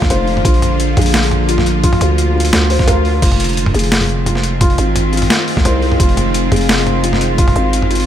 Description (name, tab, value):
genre	half-time drum and bass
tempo	173 BPM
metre	4/4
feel	half-time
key	F dorian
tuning	A4 = 440 Hz
part	bowed-like drone	sustained chords	0.0-8.1 s	D3 to F4	-20 LUFS	equal	built-in reverb, sidechain pumping
part	felt-muted upright piano	arpeggios	0.0-8.1 s	F4 to C5	-21 LUFS	left 2 dB	ping-pong delay
part	boom bap sampler-style drum kit	drums	0.0-8.1 s	crash cymbal, hi-hat, snare drum, toms	-17 LUFS	equal	overdrive
part	electronic kick drum	drums	0.0-7.5 s	none	-15 LUFS	equal	overdrive
part	metallic inharmonic drone	texture	0.0-8.1 s	F4	-25 LUFS	left 1 dB	chorus, built-in reverb
part	growling 808-style bass	bass	0.1-8.1 s	F1 to D2	-16 LUFS	equal	tube saturation
part	swell	sound effects	2.7-3.2 s	none	-24 LUFS	right 4 dB	none
room	digital ambience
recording	none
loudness	-11 LUFS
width	side -10 dB against mid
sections	0.0-8.1 A section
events	swell 2.7-3.2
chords	0.0 Bb; 3.2 Fm7